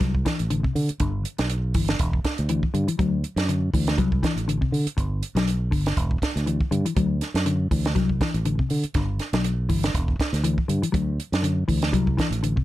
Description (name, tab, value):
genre	afrobeat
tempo	121 BPM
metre	4/4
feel	swing 55% on 16ths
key	D mixolydian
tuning	A4 = 440 Hz
part	mellow electric guitar	arpeggios	0.0-12.6 s	C3 to F#3	-26 LUFS	left 4 dB	slapback echo
part	fingered electric bass	bass	0.0-12.5 s	E1 to D3	-24 LUFS	right 1 dB	none
part	compact cocktail drum kit	drums	0.0-12.6 s	hi-hat, kick drum, snare drum	-26 LUFS	right 1 dB	none
room	light reverb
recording	none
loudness	-21 LUFS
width	side -15 dB against mid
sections	0.0-12.6 A section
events	none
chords	0.0 D7; 1.0 G6; 3.0 D7; 5.0 G6; 7.0 D7; 9.0 G6; 10.9 D7